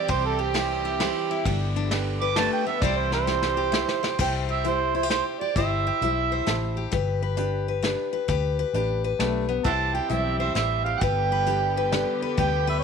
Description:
honky-tonk and classic country; 132 BPM; 3/4; swing 65% on 8ths; C major; A4 = 441 Hz
overdriven harmonica; second line; 0.0-6.7, 9.7-12.8 s; G4 to D6; -26 LUFS; right 10 dB
picked steel-string acoustic guitar; accompaniment; 0.0-12.8 s; C3 to C5; -28 LUFS; left 11 dB
warm studio string section; sustained chords; 0.0-4.2, 9.7-12.8 s; D3 to G4; -34 LUFS; equal
vintage muted fingered electric bass; bass; 0.1-12.8 s; G1 to D2; -28 LUFS; left 1 dB
soft brush drum kit; drums; 0.1-12.5 s; crash cymbal, hi-hat, kick drum, ride cymbal, snare drum; -30 LUFS; left 2 dB
clear upright piano; accompaniment; 0.5-12.3 s; D4 to A5; -34 LUFS; right 11 dB
moderate echo chamber reverb, RT60 1.7 s, studio ambience; 1960s-style stereo with parts hard left and right; -22 LUFS; side -6 dB against mid
0.0-4.2 A section; 4.2-12.8 B section
harmonica solo 0.0-4.2, 4.2-12.8; drum fill 2.8-4.2; upright piano fill 6.0-6.9
0.0 C; 1.5 G; 2.8 C; 6.9 G; 9.7 C; 11.0 G
| 0.09 0.55 1.00 | 1.46 1.92 2.37 | 2.83 3.28 3.73 | 4.19 4.64 5.10 | 5.55 6.01 6.47 | 6.92 7.38 7.83 | 8.29 8.74 9.20 | 9.65 10.11 10.56 | 11.02 11.47 11.93 | 12.38

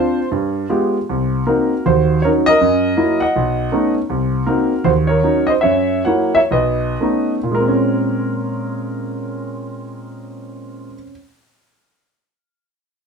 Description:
solo jazz; 110-162 BPM; 4/4; swing 64% on 8ths, rubato; Bb minor; A4 = 440 Hz
warm concert grand piano; solo; 0.0-11.1 s; B1 to Gb5; -15 LUFS; right 1 dB
wet studio reverb, RT60 0.6 s; minimal, uncompressed stereo recording; -14 LUFS; side -5 dB against mid
0.0-1.1 A section; 1.1-7.5 B section; 7.5-11.8 C section
slowing down 4.1-7.5
0.3 G7b9; 1.1 Cm7b5; 1.8 Ebm7; 2.6 Gb7; 3.4 B9; 4.1 Cm7b5; 4.8 Ebm7; 5.6 Gb7; 6.5 B9; 7.5 Bbm9
0.32 0.70 | 1.09 1.47 1.85 2.22 | 2.60 2.98 3.35 3.72 | 4.09 4.47 4.85 5.24 | 5.64 6.07 6.52 7.01 | 7.54 8.09 8.63 9.16 | 9.70 10.23 10.76

